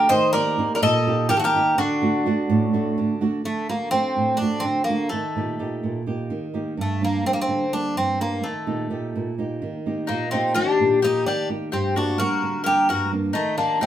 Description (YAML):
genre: greek folk, Greek bouzouki band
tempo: 254 BPM (eighths)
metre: 7/8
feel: straight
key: unclear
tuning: A4 = 440 Hz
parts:
  - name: Greek bouzouki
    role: melody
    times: 0.0-13.9 s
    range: A3 to C5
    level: -23 LUFS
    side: right 1 dB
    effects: none
  - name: mandolin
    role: second line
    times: 0.0-3.2, 10.1-13.9 s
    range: D4 to Eb5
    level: -23 LUFS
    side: left 4 dB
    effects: none
  - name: flamenco guitar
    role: accompaniment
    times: 0.0-13.9 s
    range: G2 to G4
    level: -24 LUFS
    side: right 3 dB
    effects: none
room: wet studio ambience, RT60 0.5 s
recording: band playing live in one room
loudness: -20 LUFS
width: side -11 dB against mid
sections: 0.0-3.5 A section; 3.5-13.9 B section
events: speeding up 0.0-13.9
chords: 0.1 Eb; 1.8 D; 5.1 Eb; 6.8 Gm; 8.4 Eb; 11.7 Gm; 13.3 Eb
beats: | 0.11 0.35 0.59 0.83 1.07 1.31 1.55 | 1.79 2.02 2.26 2.50 2.74 2.98 3.22 | 3.46 3.69 3.93 4.17 4.41 4.65 4.88 | 5.12 5.36 5.60 5.83 6.07 6.31 6.55 | 6.78 7.02 7.26 7.49 7.73 7.96 8.20 | 8.44 8.67 8.91 9.14 9.38 9.61 9.85 | 10.08 10.31 10.55 10.78 11.02 11.25 11.48 | 11.72 11.95 12.18 12.42 12.65 12.88 13.11 | 13.35 13.58 13.81